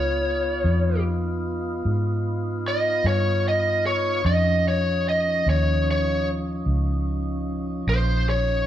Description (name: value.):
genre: slow blues.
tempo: 50 BPM (dotted quarters).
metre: 12/8.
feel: straight.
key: unclear.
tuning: A4 = 440 Hz.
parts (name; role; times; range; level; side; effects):
lead guitar through a small cranked amp; melody; 0.0-8.7 s; C5 to Eb5; -23 LUFS; equal; overdrive.
mellow tonewheel organ; sustained chords; 0.0-8.7 s; F3 to F4; -28 LUFS; right 1 dB; slow rotary speaker.
vintage muted fingered electric bass; bass; 0.0-8.7 s; Bb1 to Ab2; -24 LUFS; equal; none.
room: moderate stone room reverb, RT60 1.0 s.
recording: band playing live in one room.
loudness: -20 LUFS.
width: side -11 dB against mid.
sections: 0.0-8.7 A section.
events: lead electric guitar solo 0.0-8.7.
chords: 0.0 Db7.